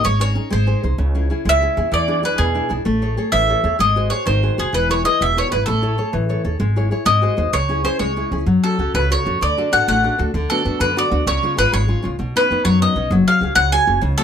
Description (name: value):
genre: italian folk, Italian serenade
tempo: 129 BPM (dotted quarters)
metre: 6/8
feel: straight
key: C# harmonic minor, F# harmonic minor from 8.5 s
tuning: A4 = 440 Hz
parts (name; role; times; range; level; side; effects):
- bowl-back mandolin; melody; 0.0-14.2 s; G#4 to G#5; -18 LUFS; equal; none
- nylon-string guitar; accompaniment; 0.0-14.2 s; B2 to C#5; -21 LUFS; left 2 dB; none
- upright bass; bass; 0.1-14.1 s; E1 to F#2; -20 LUFS; equal; none
room: light reverb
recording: close, detailed microphones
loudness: -15 LUFS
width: side -8 dB against mid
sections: 0.0-8.5 A section; 8.5-14.2 B section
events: none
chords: 0.0 G#sus4; 0.5 G#; 1.0 C#m; 1.9 E7; 2.9 Amaj7; 3.8 G#7; 4.7 E; 5.7 Amaj7; 6.6 C#m/G#; 7.1 G#7; 7.5 C#m; 8.5 F#m; 9.4 D; 10.3 Bm/D; 11.3 C#; 12.2 Badd9; 13.1 F#sus2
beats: | 0.05 0.52 | 0.99 1.46 | 1.92 2.39 | 2.86 3.32 | 3.79 4.26 | 4.73 5.21 | 5.67 6.14 | 6.60 7.07 | 7.53 8.00 | 8.47 8.94 | 9.41 9.87 | 10.34 10.80 | 11.26 11.72 | 12.19 12.65 | 13.11 13.57 | 14.03